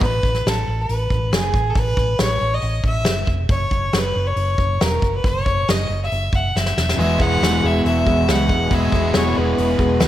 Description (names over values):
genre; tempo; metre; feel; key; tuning
folk rock and heartland rock; 138 BPM; 4/4; straight; unclear; A4 = 440 Hz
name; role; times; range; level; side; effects
clear fiddle; melody; 0.0-10.1 s; G#4 to F#5; -22 LUFS; equal; digital delay
picked twelve-string acoustic guitar; accompaniment; 0.0, 7.0-10.1 s; E2 to G#4; -23 LUFS; left 2 dB; none
crunchy overdriven guitar; riff; 0.0, 7.0-10.1 s; E2 to G#4; -21 LUFS; equal; slapback echo
hollow-body short-scale fingered electric bass; bass; 0.0-10.1 s; E1 to C#2; -22 LUFS; equal; none
soft brush drum kit; drums; 0.0-10.1 s; hi-hat, kick drum, snare drum; -21 LUFS; equal; none
room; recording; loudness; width
light reverb, studio reverb; none; -16 LUFS; side -12 dB against mid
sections
0.0-10.1 A section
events
drum fill 6.5-7.0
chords
0.0 Asus2; 3.5 F#5; 6.8 E